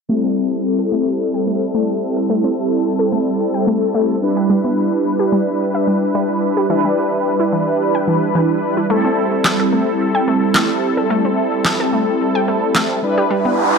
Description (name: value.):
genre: dance-pop.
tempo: 109 BPM.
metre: 4/4.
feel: straight.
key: A minor.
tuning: A4 = 440 Hz.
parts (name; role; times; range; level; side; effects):
mellow synth brass; accompaniment; 0.1-13.8 s; G3 to B4; -16 LUFS; equal; chorus, phaser, low-pass filter.
wide unison pluck; arpeggios; 0.1-13.5 s; E3 to G5; -21 LUFS; left 1 dB; low-pass filter, tape echo.
electronic snare drum and handclaps; drums; 9.4-12.9 s; none; -18 LUFS; equal; overdrive.
noise sweep; sound effects; 13.4-13.8 s; none; -17 LUFS; right 2 dB; none.
room: light reverb.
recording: dry, gritty hardware recording.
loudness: -14 LUFS.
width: side -5 dB against mid.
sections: 0.1-13.8 A section.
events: filter sweep 0.1-13.8; noise sweep 13.4-13.8.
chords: 0.1 Am7; 4.2 G6; 6.7 Em7; 8.9 Am7; 13.0 G6.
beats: | 0.09 0.64 1.19 1.75 | 2.29 2.85 3.40 3.95 | 4.50 5.05 5.60 6.15 | 6.70 7.25 7.80 8.35 | 8.90 9.45 10.00 10.55 | 11.10 11.65 12.20 12.75 | 13.30.